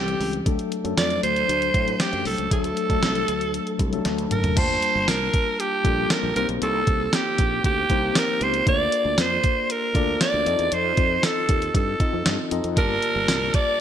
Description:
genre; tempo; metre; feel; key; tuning
1980s-style pop; 117 BPM; 4/4; straight; G minor; A4 = 440 Hz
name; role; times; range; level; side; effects
breathy alto saxophone; melody; 0.0-13.8 s; G4 to D5; -23 LUFS; right 2 dB; none
mellow tine electric piano; accompaniment; 0.0-13.8 s; E3 to A5; -28 LUFS; left 5 dB; fast stereo tremolo
sustaining fretless electric bass; bass; 0.0-13.5 s; F#1 to A2; -29 LUFS; equal; wide subtle chorus
clean 12-bit digital drum machine; drums; 0.1-13.7 s; crash cymbal, hi-hat, kick drum, snare drum, tambourine, toms; -24 LUFS; equal; gated reverb
scooped high-gain guitar; accompaniment; 12.8-13.8 s; G2 to G3; -32 LUFS; right 3 dB; distortion, wide subtle chorus
room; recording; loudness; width
light reverb, digital ambience; bright 1980s-style digital production; -20 LUFS; side -9 dB against mid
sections
0.0-4.6 A section; 4.6-13.8 B section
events
drum fill 4.1-4.6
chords
0.5 D; 4.6 Gm9; 6.4 Cm7; 8.7 Bbmaj7/D; 10.5 F7; 12.8 Gm9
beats
| 0.46 0.98 1.49 2.00 | 2.51 3.03 3.54 4.05 | 4.57 5.08 5.59 6.10 | 6.62 7.13 7.64 8.15 | 8.67 9.18 9.69 10.21 | 10.72 11.23 11.74 12.26 | 12.77 13.28 13.80

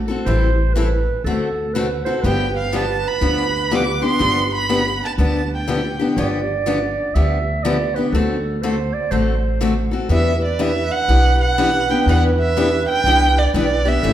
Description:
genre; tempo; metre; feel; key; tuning
acoustic string swing (jazz manouche); 122 BPM; 4/4; swing 64% on 8ths; unclear; A4 = 441 Hz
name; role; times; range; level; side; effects
mellow clarinet; second line; 0.0-14.1 s; A4 to E5; -24 LUFS; right 6 dB; none
upright bass; bass; 0.0-14.1 s; G1 to E2; -20 LUFS; equal; none
picked steel-string acoustic guitar; accompaniment; 0.1-14.1 s; C#3 to A4; -21 LUFS; left 3 dB; none
rich violin; melody; 2.3-6.2, 10.1-14.1 s; D5 to D6; -20 LUFS; right 2 dB; none
room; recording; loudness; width
wet recital hall reverb, RT60 1.6 s; recorded in a church or concert hall; -16 LUFS; side -11 dB against mid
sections
0.0-14.1 A section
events
none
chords
0.3 Am7; 1.2 D7; 2.2 G7; 8.1 D7; 10.1 Em7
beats
| 0.26 0.75 1.24 1.74 | 2.23 2.72 3.21 3.71 | 4.20 4.69 5.18 5.68 | 6.17 6.66 7.15 7.64 | 8.14 8.63 9.12 9.61 | 10.10 10.60 11.09 11.58 | 12.07 12.56 13.05 13.55 | 14.04

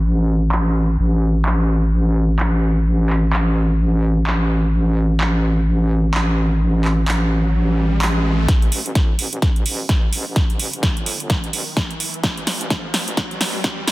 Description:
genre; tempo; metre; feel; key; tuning
bass house; 128 BPM; 4/4; swing 59% on 16ths; unclear; A4 = 441 Hz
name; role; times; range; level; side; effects
wobble bass; bass; 0.0-13.9 s; G1 to A1; -17 LUFS; equal; chorus, overdrive, sidechain pumping, high-pass filter
big-room dance drum kit; drums; 0.5-13.9 s; handclaps, hi-hat, snare drum; -23 LUFS; right 1 dB; none
riser; sound effects; 5.7-13.9 s; none; -32 LUFS; equal; none
electronic kick drum; drums; 8.5-13.8 s; none; -18 LUFS; equal; none
room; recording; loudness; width
digital ambience; dense, heavily limited modern master, high-pass filter, low-pass filter; -16 LUFS; side -19 dB against mid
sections
0.0-8.5 A section; 8.5-13.9 B section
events
filter sweep 0.0-8.5, 8.5-13.9; riser 5.7-8.5, 8.5-13.9; build-up 8.5-13.9; drum fill 8.5-13.9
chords
none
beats
0.05 0.52 | 0.99 1.45 1.92 2.39 | 2.86 3.33 3.80 4.27 | 4.74 5.20 5.67 6.14 | 6.61 7.08 7.55 8.02 | 8.49 8.95 9.42 9.89 | 10.36 10.83 11.30 11.77 | 12.24 12.70 13.17 13.64

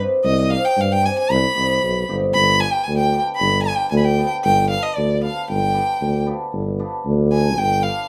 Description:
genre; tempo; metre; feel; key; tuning
klezmer; 115 BPM; 2/4; straight; G phrygian dominant; A4 = 440 Hz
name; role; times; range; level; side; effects
cimbalom; accompaniment; 0.0-8.0 s; B3 to G4; -28 LUFS; equal; none
mellow tuba; bass; 0.0-7.9 s; G1 to G2; -22 LUFS; equal; none
clear violin; melody; 0.2-8.1 s; D5 to B5; -22 LUFS; equal; none
room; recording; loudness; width
moderate small room reverb, RT60 0.5 s; band playing live in one room; -19 LUFS; mono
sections
0.0-6.5 A section; 6.5-8.1 B section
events
violin solo 6.5-8.1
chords
0.0 Cm; 2.3 G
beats
| 0.25 0.78 | 1.30 1.82 | 2.35 2.87 | 3.39 3.92 | 4.44 4.96 | 5.49 6.01 | 6.53 7.05 | 7.57

